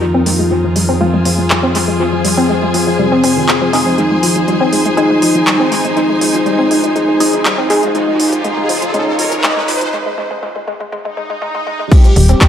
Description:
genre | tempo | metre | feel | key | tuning
melodic techno | 121 BPM | 4/4 | straight | F minor | A4 = 439 Hz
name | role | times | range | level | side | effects
wide unison lead | melody | 0.0-12.5 s | C4 to G4 | -16 LUFS | equal | cassette tape, sidechain pumping, analog delay
deep dark ambient pad | sustained chords | 0.0-12.5 s | Db3 to F5 | -22 LUFS | left 2 dB | chorus, built-in reverb, sidechain pumping
woody wave-folded pluck | arpeggios | 0.0-12.5 s | Eb3 to C4 | -18 LUFS | equal | wide subtle chorus, cassette tape, sidechain pumping, analog delay
analog drone | drone | 0.0-12.5 s | F2 to F3 | -22 LUFS | left 1 dB | chorus, sidechain pumping
rich studio string section | texture | 0.0-9.9 s | Eb4 to Ab5 | -20 LUFS | equal | sidechain pumping
techno drum kit | drums | 0.3-12.5 s | crash cymbal, handclaps, hi-hat | -18 LUFS | equal | dub echo
filtered dub chord stab | stabs | 1.0-9.9 s | Db3 to Ab4 | -19 LUFS | left 1 dB | chorus, sidechain pumping, dub echo
riser and swell | sound effects | 6.4-11.9 s | none | -24 LUFS | equal | none
electronic kick drum | drums | 11.9-12.5 s | none | -6 LUFS | equal | overdrive
tight sequencer bass | bass | 12.2-12.3 s | Eb1 | -8 LUFS | equal | sidechain pumping
room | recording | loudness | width
wet echo chamber reverb, RT60 1.4 s | echo-heavy mix, high-pass filter | -11 LUFS | side -9 dB against mid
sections
0.0-11.9 A section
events
build-up 0.0-11.9; filter sweep on synth pluck 0.0-11.9; filter sweep on analog synth lead 0.0-11.9; riser 6.4-9.9; break 9.9-11.9; swell 11.1-11.9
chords
0.0 Fm; 7.9 Db; 11.9 Eb

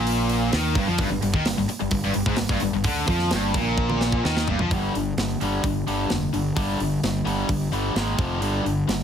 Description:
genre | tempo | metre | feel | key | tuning
hard rock | 129 BPM | 4/4 | straight | G minor | A4 = 440 Hz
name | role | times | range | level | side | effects
cranked stack guitar | riff | 0.0-9.0 s | F2 to Ab3 | -28 LUFS | right 9 dB | overdrive
distorted electric guitar | riff | 0.0-4.7 s | G2 to F3 | -28 LUFS | equal | overdrive
tight distorted guitar | riff | 0.0-9.0 s | F2 to Ab3 | -27 LUFS | left 10 dB | distortion
fuzz fingered electric bass | bass | 0.0-9.0 s | F1 to F2 | -28 LUFS | equal | overdrive
tight metal drum kit | drums | 0.1-9.0 s | hi-hat, kick drum, snare drum, toms | -27 LUFS | right 1 dB | none
room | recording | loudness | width
light reverb, small room ambience | heavily compressed radio sound, multiband compression | -21 LUFS | side -8 dB against mid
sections
0.0-4.7 A section; 4.7-9.0 B section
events
drum fill 3.8-4.7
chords
0.0 Gm; 4.7 G5; 8.0 Ab5; 8.2 F5; 8.4 G5

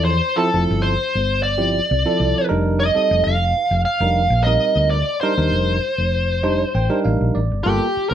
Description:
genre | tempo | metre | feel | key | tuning
electric jazz fusion | 99 BPM | 4/4 | straight | unclear | A4 = 440 Hz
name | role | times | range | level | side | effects
smooth overdriven lead guitar | melody | 0.0-8.1 s | G4 to F5 | -19 LUFS | equal | plate reverb
bell-like tine electric piano | accompaniment | 0.0-8.1 s | F3 to G5 | -22 LUFS | right 2 dB | none
hollow-body short-scale fingered electric bass | bass | 0.0-8.1 s | F1 to E2 | -20 LUFS | left 1 dB | none
room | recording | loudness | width
light reverb | none | -16 LUFS | side -10 dB against mid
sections
0.0-7.6 A section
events
tine electric piano fill 6.4-7.6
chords
0.0 G13sus4; 2.5 F13sus4

